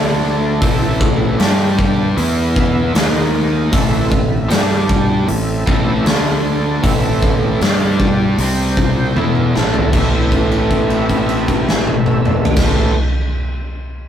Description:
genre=blues rock power trio and southern rock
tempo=77 BPM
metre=4/4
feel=straight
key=A minor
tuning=A4 = 438 Hz
part: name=overdriven tonewheel organ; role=sustained chords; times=0.0-12.9 s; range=A3 to E5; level=-25 LUFS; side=right 2 dB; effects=chorus vibrato, slow rotary speaker
part: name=raw garage guitar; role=riff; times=0.0-12.9 s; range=A2 to G4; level=-19 LUFS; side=equal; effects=overdrive
part: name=fuzz fingered electric bass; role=bass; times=0.0-12.9 s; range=A1 to G2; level=-19 LUFS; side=equal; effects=overdrive
part: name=huge arena drum kit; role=drums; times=0.6-12.8 s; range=crash cymbal, hi-hat, kick drum, snare drum, toms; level=-16 LUFS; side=left 1 dB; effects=none
room=light reverb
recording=rough rehearsal-room recording, warm saturation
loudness=-13 LUFS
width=side -9 dB against mid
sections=0.0-9.9 A section; 9.9-13.0 B section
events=drum fill 9.2-9.9; held note 9.9-12.6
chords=0.0 D5; 0.6 Am; 1.4 G5; 2.2 E5; 3.0 D#5; 3.7 Am; 4.5 G5; 5.3 Am; 6.1 D5; 6.8 Am; 7.6 G5; 8.4 C5; 9.2 A5; 9.9 Am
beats=| 0.63 1.40 2.18 2.96 | 3.73 4.51 5.28 6.06 | 6.83 7.61 8.38 9.16 | 9.94 10.71 11.49 12.26

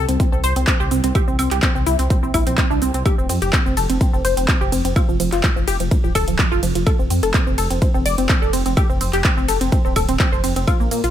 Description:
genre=progressive house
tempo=126 BPM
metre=4/4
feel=straight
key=F major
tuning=A4 = 441 Hz
part: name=tight sequenced synth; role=arpeggios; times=0.0-11.1 s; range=F3 to D5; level=-21 LUFS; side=equal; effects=chorus, sidechain pumping, ping-pong delay
part: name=dark detuned saw bass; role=bass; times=0.0-11.1 s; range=D1 to Bb2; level=-22 LUFS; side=equal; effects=sidechain pumping
part: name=big-room dance drum kit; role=drums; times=0.1-11.1 s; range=cabasa, handclaps, hi-hat, ride cymbal, woodblock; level=-24 LUFS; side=right 1 dB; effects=overdrive, sidechain pumping on perc, small room ambience, sidechain pumping on hats, sidechain pumping on cymbals
part: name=electronic kick drum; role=drums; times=0.2-10.8 s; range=none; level=-18 LUFS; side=equal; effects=overdrive, small room ambience
room=little or no reverb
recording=none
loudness=-16 LUFS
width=side -10 dB against mid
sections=0.0-11.1 A section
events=none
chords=0.0 C5; 3.1 F5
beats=0.20 0.68 | 1.15 1.63 2.10 2.58 | 3.06 3.53 4.01 4.49 | 4.96 5.44 5.91 6.39 | 6.87 7.34 7.82 8.29 | 8.77 9.25 9.72 10.20 | 10.68

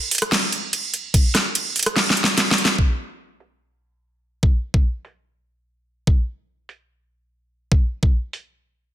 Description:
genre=dubstep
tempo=146 BPM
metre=4/4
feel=half-time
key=none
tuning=none
part: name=dubstep drum kit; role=drums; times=0.1-8.4 s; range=crash cymbal, hi-hat, rim click, snare drum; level=-18 LUFS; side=right 1 dB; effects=low-pass filter on hats, low-pass filter on cymbals, low-pass filter on snare
part: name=electronic kick drum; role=drums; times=1.1-8.1 s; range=none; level=-17 LUFS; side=equal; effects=none
room=light reverb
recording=dense, heavily limited modern master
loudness=-18 LUFS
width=side -12 dB against mid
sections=0.0-2.8 A section; 2.8-8.9 B section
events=drop 0.0-2.8; kick drops out 2.0-2.8; drum fill 2.0-2.8; filter sweep on drum 2.8-8.9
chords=none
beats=0.32 0.73 | 1.14 1.55 1.96 2.37 | 2.79 3.20 3.61 4.02 | 4.43 4.84 5.25 5.66 | 6.07 6.48 6.89 7.31 | 7.72 8.13

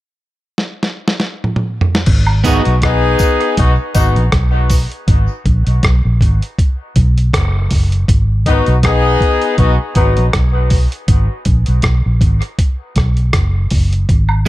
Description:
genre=dub reggae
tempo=80 BPM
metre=4/4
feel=swing 55% on 16ths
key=G# minor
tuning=A4 = 440 Hz
part: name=dusty soul sampler-style drum kit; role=drums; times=0.6-14.3 s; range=crash cymbal, hi-hat, kick drum, rim click, snare drum, toms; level=-14 LUFS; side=equal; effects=none
part: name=vintage muted fingered electric bass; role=bass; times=2.1-14.5 s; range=F#1 to B1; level=-13 LUFS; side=equal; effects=none
part: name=woodblock and tambourine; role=percussion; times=2.3-4.9, 14.3-14.5 s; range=none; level=-23 LUFS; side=right 3 dB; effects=none
part: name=electric guitar at the edge of break-up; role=accompaniment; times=2.4-2.6, 14.5 s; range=B3 to G#4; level=-20 LUFS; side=right 6 dB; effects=dub echo
part: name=warm horn section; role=second line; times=2.5-10.3 s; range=F#3 to G#4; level=-17 LUFS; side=left 3 dB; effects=dub echo
room=little or no reverb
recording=none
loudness=-11 LUFS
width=side -16 dB against mid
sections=0.0-2.1 A section; 2.1-14.5 B section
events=drum fill 0.6-2.1; part muted 5.1-14.1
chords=0.0 N.C.; 2.1 G#m; 3.6 B; 6.6 B5; 8.1 G#m; 9.6 B; 12.6 B5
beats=0.57 1.33 | 2.08 2.83 3.58 4.33 | 5.08 5.83 6.58 7.33 | 8.08 8.83 9.58 10.33 | 11.08 11.83 12.58 13.33 | 14.08

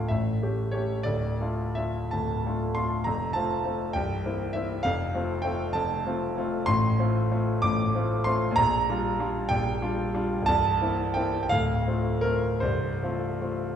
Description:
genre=classical, romantic character piece for solo piano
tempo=50-69 BPM (dotted quarters)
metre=6/8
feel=rubato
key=F major from 6.7 s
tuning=A4 = 440 Hz
part: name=clear grand piano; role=solo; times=0.0-13.8 s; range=C1 to D6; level=-24 LUFS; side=equal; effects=none
room=wet recital hall reverb, RT60 1.5 s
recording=heard from further back in the room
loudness=-24 LUFS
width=side -8 dB against mid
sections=0.0-13.8 A section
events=none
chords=0.1 A7; 1.1 Dm; 3.1 F; 3.9 C7; 4.8 F; 6.7 F/A; 8.6 Gm7/Bb; 10.5 C7; 11.5 Dm7; 12.6 F/C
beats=0.10 | 1.06 2.13 | 3.06 3.94 | 4.85 5.75 | 6.69 7.64 | 8.59 9.51 | 10.48 11.51 | 12.62

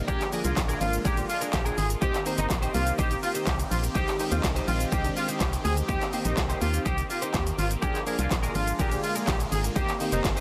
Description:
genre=dance-pop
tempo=124 BPM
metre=4/4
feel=straight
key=Eb major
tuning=A4 = 438 Hz
part: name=supersaw pad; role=sustained chords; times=0.0-10.4 s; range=D3 to G4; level=-38 LUFS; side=equal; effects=phaser, sidechain pumping
part: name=clear horn section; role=melody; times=0.1-10.2 s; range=Eb4 to Ab4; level=-34 LUFS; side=equal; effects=tape echo
part: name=deep mellow chord stab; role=accompaniment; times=0.1-10.3 s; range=Eb3 to Bb4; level=-38 LUFS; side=equal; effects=chorus, sidechain pumping
part: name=twelve-string electric guitar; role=riff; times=0.1-10.4 s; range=D4 to C5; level=-37 LUFS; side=equal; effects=analog chorus
part: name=organ-like FM bass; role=bass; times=0.1-10.4 s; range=F1 to Eb2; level=-31 LUFS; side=equal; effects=sidechain pumping
part: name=deep house drum kit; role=drums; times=0.1-10.4 s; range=handclaps, hi-hat, kick drum, shaker, snare drum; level=-32 LUFS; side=equal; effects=none
room=digital ambience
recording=dense, heavily limited modern master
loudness=-27 LUFS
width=mono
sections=0.0-10.4 A section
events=none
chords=0.1 Bb7; 2.0 Eb6; 4.0 Abmaj7; 5.9 Eb6; 7.8 Bb7; 9.8 Eb6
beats=| 0.08 0.57 1.05 1.53 | 2.02 2.50 2.99 3.47 | 3.95 4.44 4.92 5.41 | 5.89 6.37 6.86 7.34 | 7.83 8.31 8.79 9.28 | 9.76 10.24

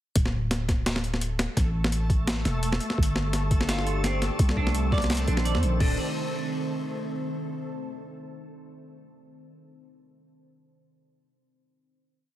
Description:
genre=half-time drum and bass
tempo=170 BPM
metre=4/4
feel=swing 55% on 16ths, half-time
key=unclear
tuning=A4 = 438 Hz
part: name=growling 808-style bass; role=bass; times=0.2-6.0 s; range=D1 to F2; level=-27 LUFS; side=equal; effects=none
part: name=boom bap sampler-style drum kit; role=drums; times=0.2-5.9 s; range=crash cymbal, hi-hat, snare drum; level=-30 LUFS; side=equal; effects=overdrive
part: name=electronic kick drum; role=drums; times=0.2-5.9 s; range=none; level=-25 LUFS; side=equal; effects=overdrive
part: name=backwards swelling texture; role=texture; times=1.2-5.8 s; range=A3 to A4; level=-36 LUFS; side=left 1 dB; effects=built-in reverb
part: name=deep dark ambient pad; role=sustained chords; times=3.4-6.0 s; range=Eb3 to C5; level=-34 LUFS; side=right 1 dB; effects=chorus, built-in reverb, sidechain pumping
part: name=semi-hollow electric guitar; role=arpeggios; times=3.7-6.0 s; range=C4 to D5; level=-33 LUFS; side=right 2 dB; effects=wide subtle chorus, digital delay
room=light reverb, digital ambience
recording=heavily compressed radio sound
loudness=-24 LUFS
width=side -13 dB against mid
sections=0.2-5.8 drop; 5.8-7.2 final chord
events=drop 0.2-5.8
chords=0.2 D5; 1.6 A5; 3.0 G5; 4.4 Cm7; 5.8 Dm7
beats=| 0.16 0.51 0.86 1.22 | 1.57 1.92 2.27 2.63 | 2.98 3.33 3.69 4.04 | 4.39 4.75 5.10 5.45 | 5.80

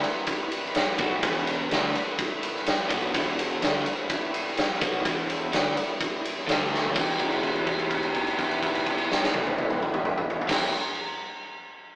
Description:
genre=blues rock power trio and southern rock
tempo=126 BPM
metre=4/4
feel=straight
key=E minor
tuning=A4 = 440 Hz
part: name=overdriven tonewheel organ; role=sustained chords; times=0.0-10.7 s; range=G3 to B4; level=-34 LUFS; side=equal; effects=chorus vibrato, slow rotary speaker
part: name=overdriven electric guitar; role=riff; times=0.0-10.7 s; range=E2 to G4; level=-30 LUFS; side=equal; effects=none
part: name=big rock drum kit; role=drums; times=0.0-10.6 s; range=crash cymbal, kick drum, ride cymbal, snare drum, toms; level=-25 LUFS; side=equal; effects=none
part: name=growling fingered electric bass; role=bass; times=1.0-10.7 s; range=E1 to D2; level=-35 LUFS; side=equal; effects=overdrive
room=moderate studio reverb, RT60 0.6 s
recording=rough rehearsal-room recording, tube saturation, AM radio sound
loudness=-24 LUFS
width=side -24 dB against mid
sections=0.0-7.0 A section; 7.0-10.8 B section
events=drum fill 6.7; held note 7.0-10.5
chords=0.0 Em; 6.5 D5; 7.0 Em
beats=0.28 0.76 | 1.23 1.71 2.19 2.67 | 3.15 3.62 4.10 4.58 | 5.05 5.53 6.01 6.48 | 6.96 7.44 7.91 8.39 | 8.87 9.34 9.82 10.30

